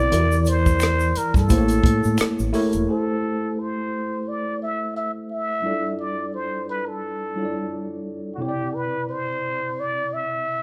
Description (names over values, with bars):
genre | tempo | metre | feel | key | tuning
R&B, neo-soul | 87 BPM | 4/4 | swing 57% on 16ths | A minor | A4 = 437 Hz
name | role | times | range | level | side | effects
trumpet with plunger mute | melody | 0.0-10.6 s | F#4 to E5 | -28 LUFS | equal | none
tine electric piano | accompaniment | 0.0-10.6 s | C3 to D5 | -28 LUFS | equal | none
deep dub fingered electric bass | bass | 0.0-2.9 s | E1 to A2 | -25 LUFS | equal | none
compact cocktail drum kit | drums | 0.1-2.9 s | hi-hat, kick drum, rim click | -23 LUFS | equal | none
tube shaker and finger snaps | percussion | 0.1-2.9 s | none | -38 LUFS | equal | none
room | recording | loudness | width
moderate large studio reverb, RT60 1.3 s | band playing live in one room | -23 LUFS | mono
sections
0.0-2.9 A section; 2.9-10.6 B section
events
none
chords
0.1 Em7b5; 1.5 A7b9; 2.9 Am7; 5.6 Gsus2; 8.4 Cadd9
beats
| 0.12 0.81 1.50 2.19 | 2.88 3.57 4.25 4.95 | 5.63 6.32 7.01 7.70 | 8.39 9.08 9.77 10.46